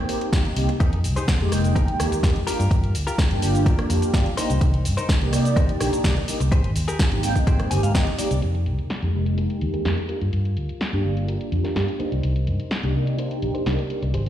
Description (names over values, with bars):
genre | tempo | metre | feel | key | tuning
filtered disco house | 126 BPM | 4/4 | straight | C minor | A4 = 440 Hz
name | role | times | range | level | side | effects
mellow synth brass | accompaniment | 0.0-14.0 s | Ab3 to G5 | -26 LUFS | right 1 dB | chorus, phaser, sidechain pumping, low-pass filter
direct-recorded clean electric guitar | riff | 0.1-14.3 s | Eb4 to Ab5 | -33 LUFS | left 3 dB | vintage 12-bit sampler grit, sidechain pumping, low-pass filter
house drum kit | drums | 0.1-14.3 s | hi-hat, rim click, shaker, snare drum | -30 LUFS | equal | sidechain pumping on hats, low-pass filter on hats, studio reverb, low-pass filter on snare, sidechain pumping on perc, low-pass filter on perc
electronic kick drum | drums | 0.3-8.0 s | none | -21 LUFS | equal | overdrive, studio reverb
vintage muted fingered electric bass | bass | 0.6-14.3 s | F1 to C3 | -23 LUFS | equal | sidechain pumping, low-pass filter
room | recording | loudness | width
light reverb, digital ambience | played on a big sound system in a bare room, large studio reverb | -20 LUFS | side -11 dB against mid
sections
0.0-8.4 A section; 8.4-14.3 B section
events
filter sweep 0.0-8.4, 8.4-14.3; clean electric guitar fill 7.5-8.4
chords
0.0 Abmaj7 (rootless); 0.8 Fm11; 2.5 Gm7; 4.4 Cm7; 6.5 Abmaj7; 8.4 Fm11; 10.1 Gm7; 12.0 Cm7